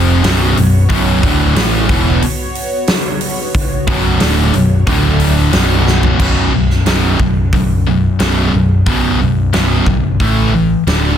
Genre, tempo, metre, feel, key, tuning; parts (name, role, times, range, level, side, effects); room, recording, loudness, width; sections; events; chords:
hard rock; 90 BPM; 4/4; straight; A4 = 440 Hz
phased analog pad; sustained chords; 0.0-6.2 s; F3 to E5; -24 LUFS; right 1 dB; phaser, chorus
biting overdriven guitar; riff; 0.0-11.2 s; B1 to A3; -17 LUFS; right 9 dB
high-gain distorted guitar; riff; 0.0-11.2 s; B1 to A3; -15 LUFS; left 6 dB; distortion
picked electric bass; bass; 0.0-11.1 s; B0 to A1; -16 LUFS; equal
huge arena drum kit; drums; 0.2-11.0 s; crash cymbal, hi-hat, kick drum, snare drum, toms; -17 LUFS; equal
light reverb; dense, heavily limited modern master; -10 LUFS; side -9 dB against mid
0.0-6.2 A section; 6.2-11.2 B section
drum fill 5.9-6.2
0.2 B5; 4.9 D5; 5.5 B5; 10.2 A5